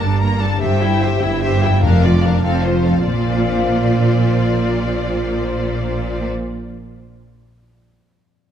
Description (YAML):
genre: cinematic, heroic adventure film score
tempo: 98 BPM (dotted quarters)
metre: 6/8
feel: straight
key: Bb major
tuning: A4 = 440 Hz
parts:
  - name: warm symphonic violin section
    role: melody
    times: 0.0-6.3 s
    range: C5 to Bb5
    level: -25 LUFS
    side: left 5 dB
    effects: none
  - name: rich symphonic violin section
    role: second line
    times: 0.0-6.3 s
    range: A4 to E5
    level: -27 LUFS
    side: equal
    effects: none
  - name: rich studio viola section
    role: accompaniment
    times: 0.0-6.3 s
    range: Bb3 to G4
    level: -23 LUFS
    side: equal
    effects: none
  - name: concert harp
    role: arpeggios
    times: 0.0-7.2 s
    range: F2 to F5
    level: -26 LUFS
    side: left 8 dB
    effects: none
  - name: rich symphonic cello section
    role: bass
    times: 0.0-6.3 s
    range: F2 to Bb2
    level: -20 LUFS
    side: right 2 dB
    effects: none
  - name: rich symphonic double bass section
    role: bass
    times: 0.0-6.3 s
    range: F1 to Bb1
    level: -21 LUFS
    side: right 3 dB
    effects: none
  - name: timpani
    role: percussion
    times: 1.8-7.0 s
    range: F2 to Bb2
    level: -21 LUFS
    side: left 2 dB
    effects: none
room: moderate scoring stage reverb, RT60 2.0 s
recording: none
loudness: -14 LUFS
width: side -9 dB against mid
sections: 0.0-3.1 A section; 3.1-5.5 B section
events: none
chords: 0.0 Gmadd9; 0.6 C/G; 1.8 Bb/F; 2.4 F; 3.1 Bbadd9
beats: 0.01 | 0.62 1.22 | 1.83 2.44 | 3.07 3.69 | 4.30 4.91